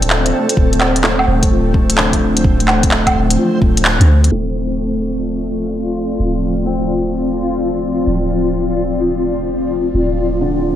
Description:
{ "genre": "future garage", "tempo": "128 BPM", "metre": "4/4", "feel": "swing 66% on 16ths", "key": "D minor", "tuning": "A4 = 440 Hz", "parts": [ { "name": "felt-muted upright piano", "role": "accompaniment", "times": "0.0-10.8 s", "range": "D3 to A4", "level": "-21 LUFS", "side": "left 1 dB", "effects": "vintage 12-bit sampler grit, sidechain pumping, tape echo" }, { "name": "granular cloud pad", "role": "sustained chords", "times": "0.0-10.8 s", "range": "F3 to D5", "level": "-20 LUFS", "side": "left 2 dB", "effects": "built-in reverb, sidechain pumping" }, { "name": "soft 808-style bass", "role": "bass", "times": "0.0-10.8 s", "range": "D1 to D2", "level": "-18 LUFS", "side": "equal", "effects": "sidechain pumping" }, { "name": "organic electronic drum kit", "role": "drums", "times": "0.0-4.3 s", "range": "handclaps, hi-hat, woodblock", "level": "-16 LUFS", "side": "equal", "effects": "none" }, { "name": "backwards swelling texture", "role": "texture", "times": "0.0-10.8 s", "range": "F3 to A4", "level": "-23 LUFS", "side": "equal", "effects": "built-in reverb" }, { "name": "electronic kick drum", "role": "drums", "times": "0.6-3.7 s", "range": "none", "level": "-16 LUFS", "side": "equal", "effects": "none" } ], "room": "light reverb, digital ambience", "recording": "low-pass filter", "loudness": "-13 LUFS", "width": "side -11 dB against mid", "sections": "0.0-4.3 A section; 4.3-10.8 B section", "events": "filter sweep on ambient pad 4.3-10.8", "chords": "0.0 Dm7", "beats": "0.10 | 0.57 1.04 1.51 1.98 | 2.44 2.91 3.38 3.85 | 4.32 4.79 5.26 5.73 | 6.20 6.66 7.13 7.60 | 8.07 8.54 9.01 9.48 | 9.95 10.41" }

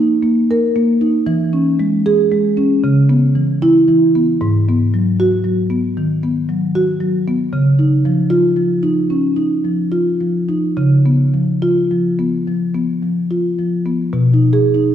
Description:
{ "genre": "classical, contemporary piece for solo marimba", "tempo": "70-78 BPM", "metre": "4/4", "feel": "rubato", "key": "unclear", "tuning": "A4 = 440 Hz", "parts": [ { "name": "marimba with soft mallets", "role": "solo", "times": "0.0-14.9 s", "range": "G#2 to Bb4", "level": "-13 LUFS", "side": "equal", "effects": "none" } ], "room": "wet scoring stage reverb, RT60 1.5 s", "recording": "recorded in a church or concert hall", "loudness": "-13 LUFS", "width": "side -10 dB against mid", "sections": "0.0-14.1 A section", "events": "none", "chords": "0.0 F7sus4 (rootless); 1.3 E6; 2.8 C#m7; 4.4 G#m7; 7.5 C#add9; 10.8 C#7; 14.1 B6", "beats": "0.49 | 1.27 2.05 2.83 3.62 | 4.41 5.18 5.96 6.75 | 7.53 8.31 9.10 9.92 | 10.77 11.62 12.47 13.30 | 14.13 14.94" }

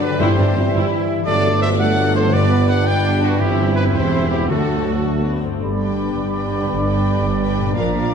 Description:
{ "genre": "cinematic", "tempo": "112 BPM (dotted quarters)", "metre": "6/8", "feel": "straight", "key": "G major", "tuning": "A4 = 443 Hz", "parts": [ { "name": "warm symphonic violin section", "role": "melody", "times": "0.0-8.1 s", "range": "D4 to G5", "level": "-30 LUFS", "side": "left 4 dB", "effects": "none" }, { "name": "clear symphonic violin section", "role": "second line", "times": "0.0-8.1 s", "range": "F#4 to G5", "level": "-29 LUFS", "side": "left 5 dB", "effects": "none" }, { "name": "clear trombone section", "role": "sustained chords", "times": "0.0-8.1 s", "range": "Bb2 to C4", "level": "-25 LUFS", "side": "right 3 dB", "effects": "none" }, { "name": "concert harp", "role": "arpeggios", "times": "0.0-8.1 s", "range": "G2 to A5", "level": "-26 LUFS", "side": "left 8 dB", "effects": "none" }, { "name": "bright trumpet", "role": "stabs", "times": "0.0-8.1 s", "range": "F#4 to G5", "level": "-25 LUFS", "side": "equal", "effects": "none" }, { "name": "rich symphonic cello section", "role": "bass", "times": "0.0-8.1 s", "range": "G2 to F#4", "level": "-25 LUFS", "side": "right 2 dB", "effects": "none" }, { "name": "warm symphonic viola section", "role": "accompaniment", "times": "0.2-8.1 s", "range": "C3 to B4", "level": "-27 LUFS", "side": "equal", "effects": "none" }, { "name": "mellow tuba", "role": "bass", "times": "0.2-5.4 s", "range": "E1 to D2", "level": "-23 LUFS", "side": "right 1 dB", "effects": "none" }, { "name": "rich symphonic double bass section", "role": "bass", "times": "0.2-8.1 s", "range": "G1 to G2", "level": "-21 LUFS", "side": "right 3 dB", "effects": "none" }, { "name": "timpani", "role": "percussion", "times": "0.2-2.8 s", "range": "G2", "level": "-29 LUFS", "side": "left 2 dB", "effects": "none" }, { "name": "bright clarinet", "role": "second line", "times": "5.6-8.1 s", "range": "F4 to G4", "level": "-30 LUFS", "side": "left 1 dB", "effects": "none" }, { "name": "small flute group", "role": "second line", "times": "5.6-8.1 s", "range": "Bb5 to B5", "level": "-29 LUFS", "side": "right 2 dB", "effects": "none" }, { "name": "warm oboe", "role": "second line", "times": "5.6-8.1 s", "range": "D5", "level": "-30 LUFS", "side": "equal", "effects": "none" }, { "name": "dark French horn section", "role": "sustained chords", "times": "5.6-8.1 s", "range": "Bb3 to D4", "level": "-26 LUFS", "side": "left 5 dB", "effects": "none" } ], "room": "wet scoring stage reverb, RT60 2.0 s", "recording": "dark, warm production", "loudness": "-15 LUFS", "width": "side -6 dB against mid", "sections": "0.0-5.6 A section; 5.6-8.1 B section", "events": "none", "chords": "0.2 C/G; 1.3 D/G; 2.3 G; 3.4 C/G; 4.5 D; 5.6 G", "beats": "| 0.20 0.73 | 1.27 1.80 | 2.34 2.87 | 3.41 3.95 | 4.50 5.06 | 5.61 6.16 | 6.70 7.23 | 7.76" }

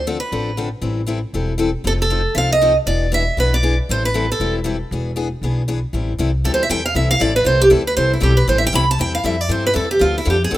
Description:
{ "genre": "acoustic string swing (jazz manouche)", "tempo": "235 BPM", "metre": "4/4", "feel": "swing 57% on 8ths", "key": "A minor", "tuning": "A4 = 441 Hz", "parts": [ { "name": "picked steel-string acoustic guitar", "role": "melody", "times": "0.0-10.6 s", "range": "E4 to B5", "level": "-17 LUFS", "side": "right 2 dB", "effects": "none" }, { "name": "upright bass", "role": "bass", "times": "0.0-10.6 s", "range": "E1 to G2", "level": "-20 LUFS", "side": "equal", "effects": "none" }, { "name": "picked steel-string acoustic guitar", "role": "accompaniment", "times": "0.1-10.6 s", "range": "D3 to A4", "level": "-23 LUFS", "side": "left 4 dB", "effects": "none" } ], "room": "small room ambience", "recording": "rough home demo mix", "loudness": "-15 LUFS", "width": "side -14 dB against mid", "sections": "0.0-5.9 A section; 5.9-10.6 B section", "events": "steel-string acoustic guitar solo 5.9-10.6", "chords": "0.0 Dm7; 0.8 Am7; 1.8 F7; 2.9 E7; 3.9 Am9; 4.9 E7; 5.9 Am7; 10.0 Dm7", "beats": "0.05 0.31 0.56 | 0.82 1.07 1.33 1.59 | 1.84 2.10 2.35 2.61 | 2.87 3.12 3.38 3.63 | 3.89 4.14 4.40 4.66 | 4.91 5.17 5.42 5.68 | 5.93 6.19 6.44 6.70 | 6.95 7.21 7.46 7.72 | 7.97 8.23 8.48 8.74 | 8.99 9.25 9.50 9.76 | 10.01 10.26 10.52" }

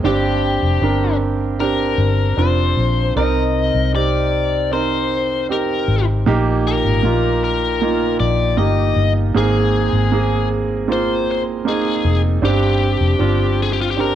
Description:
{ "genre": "pop ballad", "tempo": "78 BPM", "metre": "4/4", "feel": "straight", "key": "C minor", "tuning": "A4 = 440 Hz", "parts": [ { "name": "clear concert grand piano", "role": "accompaniment", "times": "0.0-14.2 s", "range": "G2 to Bb4", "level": "-19 LUFS", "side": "right 6 dB", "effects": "cassette tape, plate reverb" }, { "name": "vintage muted fingered electric bass", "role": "bass", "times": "0.0-14.2 s", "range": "F1 to C2", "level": "-19 LUFS", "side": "left 1 dB", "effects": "none" }, { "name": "biting lead guitar", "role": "melody", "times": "0.1-14.2 s", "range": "F4 to Eb5", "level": "-21 LUFS", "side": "left 8 dB", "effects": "overdrive, cassette tape, plate reverb" } ], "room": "moderate studio reverb, RT60 0.5 s", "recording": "home recording on cassette", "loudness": "-15 LUFS", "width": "side -10 dB against mid", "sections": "0.0-14.2 A section", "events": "none", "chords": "0.0 Gsus4; 3.2 Cm7; 6.3 Eb; 9.3 Abadd9; 12.4 Gsus4", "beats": "| 0.04 0.81 1.59 2.38 | 3.16 3.95 4.72 5.50 | 6.27 7.04 7.81 8.58 | 9.35 10.12 10.90 11.66 | 12.43 13.21 13.99" }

